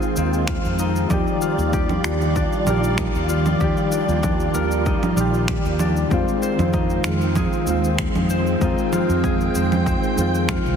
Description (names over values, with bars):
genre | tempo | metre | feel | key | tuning
sunset chillout | 96 BPM | 4/4 | swing 54% on 16ths | Eb major | A4 = 441 Hz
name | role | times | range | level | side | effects
soft electric-piano-like synth keys | accompaniment | 0.0-10.8 s | Eb3 to D5 | -24 LUFS | moving between left 5 dB and right 5 dB | chorus, auto-pan, digital delay
soft string machine | sustained chords | 0.0-10.8 s | Eb3 to G5 | -25 LUFS | equal | ensemble chorus
concert harp | arpeggios | 0.0-10.8 s | C4 to C5 | -28 LUFS | left 5 dB | digital delay
electronic shaker, finger snaps and congas | drums | 0.0-10.8 s | none | -26 LUFS | right 2 dB | soft clipping on snare
fretless electric bass | bass | 0.2-10.8 s | Bb1 to F2 | -23 LUFS | equal | none
electronic kick drum | drums | 0.5-10.6 s | none | -26 LUFS | equal | overdrive
room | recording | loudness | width
moderate lush hall reverb, RT60 2.1 s | dense, heavily limited modern master | -18 LUFS | side -7 dB against mid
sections
0.0-10.8 A section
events
none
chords
0.0 Fm7; 1.1 Ebmaj9; 6.1 Fm7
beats
0.49 | 1.11 1.74 2.36 2.99 | 3.61 4.24 4.86 5.49 | 6.11 6.74 7.36 7.99 | 8.61 9.24 9.86 10.49